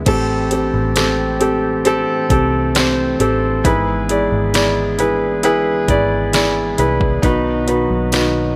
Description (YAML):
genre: pop ballad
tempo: 67 BPM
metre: 4/4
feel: straight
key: unclear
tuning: A4 = 436 Hz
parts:
  - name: felt-muted upright piano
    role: accompaniment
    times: 0.0-8.6 s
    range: G#2 to D5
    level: -18 LUFS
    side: equal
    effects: none
  - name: pipe organ, principal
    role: sustained chords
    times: 0.0-8.6 s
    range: D#3 to A4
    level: -26 LUFS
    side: equal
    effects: none
  - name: vintage muted fingered electric bass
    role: bass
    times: 0.0-8.6 s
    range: G#1 to C2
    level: -24 LUFS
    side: equal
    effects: none
  - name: smooth R&B drum kit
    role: drums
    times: 0.1-8.3 s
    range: crash cymbal, hi-hat, kick drum, snare drum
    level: -22 LUFS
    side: equal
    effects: none
  - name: tambourine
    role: percussion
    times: 1.0-8.3 s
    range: none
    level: -35 LUFS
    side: equal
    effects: none
room: moderate echo chamber reverb, RT60 2.2 s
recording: none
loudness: -16 LUFS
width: mono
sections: 0.1-8.6 A section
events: none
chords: 0.1 Am7; 3.6 E/G#; 7.2 B